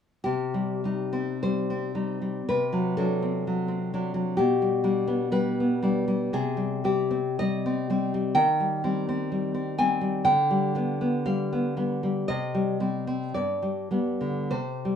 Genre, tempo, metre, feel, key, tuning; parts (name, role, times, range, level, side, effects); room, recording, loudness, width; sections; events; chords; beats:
romantic piece for solo classical guitar; 48-64 BPM; 2/4; rubato; C minor; A4 = 435 Hz
nylon-string guitar; solo; 0.2-15.0 s; G2 to Ab5; -24 LUFS; left 1 dB
moderate studio ambience, RT60 0.5 s; band playing live in one room; -24 LUFS; side -8 dB against mid
0.2-15.0 A section
0.2 Cm; 2.5 D7/C; 4.4 G/B; 6.3 Cm; 8.4 Cm/Eb; 10.3 G/D; 12.3 Cm; 13.4 G
| 0.25 1.41 | 2.45 3.43 | 4.38 5.34 | 6.34 7.40 | 8.38 9.34 | 10.30 11.28 | 12.30 13.38 | 14.55